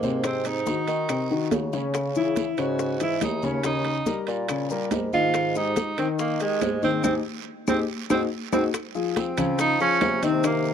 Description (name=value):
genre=Afro-Cuban jazz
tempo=141 BPM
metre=4/4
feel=straight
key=Ab major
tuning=A4 = 440 Hz
part: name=clear tenor saxophone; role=melody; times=0.0-10.7 s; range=Ab3 to Gb4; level=-26 LUFS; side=right 4 dB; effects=none
part: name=warm grand piano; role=accompaniment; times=0.0-10.7 s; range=C3 to Eb5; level=-27 LUFS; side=left 6 dB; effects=none
part: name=mellow bassoon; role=bass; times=0.0-10.7 s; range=Eb2 to F3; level=-29 LUFS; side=right 2 dB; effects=none
part: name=congas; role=percussion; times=0.0-10.7 s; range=none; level=-32 LUFS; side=equal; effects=none
part: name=guiro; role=percussion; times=0.0-10.7 s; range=none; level=-42 LUFS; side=right 19 dB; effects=none
part: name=maracas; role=percussion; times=0.0-10.7 s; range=none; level=-40 LUFS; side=left 16 dB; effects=none
part: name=bongos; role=percussion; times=0.2-10.7 s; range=none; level=-32 LUFS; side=left 6 dB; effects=none
part: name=claves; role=percussion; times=0.2-10.7 s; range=none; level=-42 LUFS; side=left 6 dB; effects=none
part: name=timbales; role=percussion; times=0.2-10.7 s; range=none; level=-32 LUFS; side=right 10 dB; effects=none
room=small room ambience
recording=dry, close 1970s-style studio recording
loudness=-22 LUFS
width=side -8 dB against mid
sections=0.0-8.7 A section; 8.7-10.7 B section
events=drum fill 1.5-1.9, 8.5; band accent 7.0-8.7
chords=0.2 Ab7; 1.9 Dbmadd9; 3.6 Eb7; 5.3 Abmaj7(no3); 7.9 Ab7; 8.7 Dbmaj7